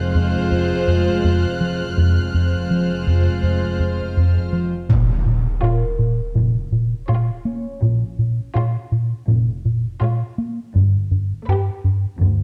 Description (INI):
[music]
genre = cinematic, suspense film score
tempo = 82 BPM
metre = 4/4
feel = straight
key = unclear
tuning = A4 = 441 Hz
[part]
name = warm chamber violin section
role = melody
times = 0.0-12.0 s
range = B4 to Db5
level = -32 LUFS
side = equal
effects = none
[part]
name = warm studio viola section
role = accompaniment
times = 0.0-12.0 s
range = Ab3 to F4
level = -28 LUFS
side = equal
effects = none
[part]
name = dark chamber cello section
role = bass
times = 0.0-12.4 s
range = D2 to Bb2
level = -30 LUFS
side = equal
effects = none
[part]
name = dark chamber double bass section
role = bass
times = 0.0-12.4 s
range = F1 to D2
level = -29 LUFS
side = equal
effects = none
[part]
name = concert harp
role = texture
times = 0.0-10.8 s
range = Db4 to Db5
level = -37 LUFS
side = equal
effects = none
[part]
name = warm chamber violin section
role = texture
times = 0.0-4.5 s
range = F6 to F#6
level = -34 LUFS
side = equal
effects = none
[part]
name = rubbery square bass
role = riff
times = 0.2-12.4 s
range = F2 to Bb3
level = -20 LUFS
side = equal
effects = none
[part]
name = impact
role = sound effects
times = 4.9-7.8 s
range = none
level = -26 LUFS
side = equal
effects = none
[part]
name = warm chamber violin section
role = second line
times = 5.6-12.0 s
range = F4 to G4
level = -30 LUFS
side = equal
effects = none
[sound]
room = light reverb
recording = dark, warm production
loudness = -19 LUFS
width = mono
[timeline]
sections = 0.0-4.9 A section; 4.9-12.4 B section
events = impact 4.9-7.8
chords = 0.0 Fm; 4.9 Bbm7; 10.8 Gadd9